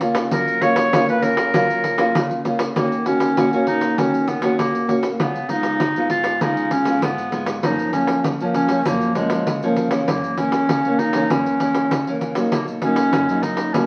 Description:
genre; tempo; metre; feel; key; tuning
samba and choro; 98 BPM; 4/4; straight; Eb minor; A4 = 440 Hz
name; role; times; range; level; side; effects
nylon-string guitar; accompaniment; 0.0-13.9 s; Gb2 to Gb4; -24 LUFS; equal; none
pandeiro; percussion; 0.0-13.9 s; none; -26 LUFS; equal; none
warm clarinet; melody; 0.3-13.9 s; Ab3 to C#5; -23 LUFS; equal; none
room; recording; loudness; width
wet studio reverb, RT60 0.8 s; very old 78 rpm record, vinyl crackle; -19 LUFS; mono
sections
0.0-2.8 A section; 2.8-13.9 B section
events
none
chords
0.0 F#maj7; 2.8 Ebm7; 5.2 Db7; 7.6 Gbmaj7; 10.1 Gb7; 12.5 Bmaj7

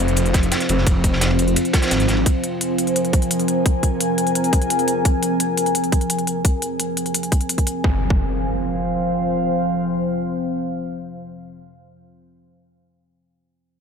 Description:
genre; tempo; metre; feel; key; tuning
dark technical drum and bass; 172 BPM; 4/4; straight; F minor; A4 = 439 Hz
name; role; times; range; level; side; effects
deep dark ambient pad; sustained chords; 0.0-11.4 s; F3 to Ab5; -20 LUFS; equal; chorus, built-in reverb, sidechain pumping
snarling distorted saw bass; bass; 0.0-2.2 s; F1 to Ab1; -19 LUFS; equal; distortion, overdrive, sidechain pumping
electronic hi-hat; drums; 0.1-7.7 s; none; -24 LUFS; left 1 dB; none
crunchy breakbeat drum kit; drums; 0.2-2.3 s; ride cymbal, snare drum; -26 LUFS; equal; high-pass filter on cymbals, high-pass filter on snare, high-pass filter on room
electronic kick drum; drums; 0.3-8.2 s; none; -18 LUFS; equal; overdrive
impact; sound effects; 7.8-11.5 s; none; -27 LUFS; equal; none
room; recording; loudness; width
moderate lush hall reverb, RT60 1.7 s; none; -17 LUFS; side -6 dB against mid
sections
0.0-7.8 A section; 7.8-10.6 B section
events
none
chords
0.0 F5

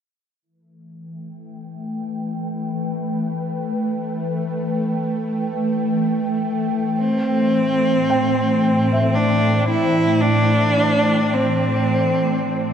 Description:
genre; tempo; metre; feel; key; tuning
ambient; free time; none; none; A minor; A4 = 441 Hz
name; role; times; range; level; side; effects
ethereal airy pad; sustained chords; 1.1-12.7 s; A2 to G5; -20 LUFS; left 1 dB; ensemble chorus, built-in reverb
bowed-like drone; drone; 2.0-12.7 s; A3; -30 LUFS; right 1 dB; built-in reverb
clear cello; melody; 7.0-12.7 s; C4 to E4; -19 LUFS; right 1 dB; tape echo
felt-muted upright piano; arpeggios; 8.1-12.7 s; E5 to G5; -28 LUFS; equal; tape echo
room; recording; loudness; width
wet cathedral reverb, RT60 6.1 s; none; -17 LUFS; side -8 dB against mid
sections
0.4-12.7 A section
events
fade-in on synth drone 0.4-12.7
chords
0.4 Asus2; 7.0 C6/A

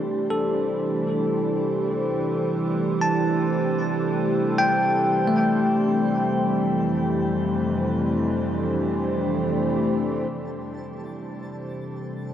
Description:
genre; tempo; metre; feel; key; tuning
ambient; free time; none; none; C major; A4 = 439 Hz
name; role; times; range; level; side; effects
evolving wavetable pad; sustained chords; 0.0-12.3 s; F2 to C5; -24 LUFS; right 1 dB; chorus, built-in reverb, shimmer reverb
bell-like tine electric piano; arpeggios; 0.0-9.5 s; A3 to A5; -25 LUFS; left 2 dB; diffuse ambient delay, shimmer reverb
analog drone; drone; 0.0-12.3 s; C3 to G3; -30 LUFS; equal; chorus
twinkling granular texture; texture; 10.5-12.3 s; A5; -48 LUFS; right 1 dB; built-in reverb, shimmer reverb
room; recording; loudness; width
wet cathedral reverb, RT60 7.7 s; in a vast, echoing space; -21 LUFS; side -10 dB against mid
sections
0.0-10.3 A section; 10.3-12.3 B section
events
fade-in on tine electric piano 0.0-10.3; fade-in on synth drone 0.0-10.3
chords
0.0 C69; 6.1 F69; 10.3 C69

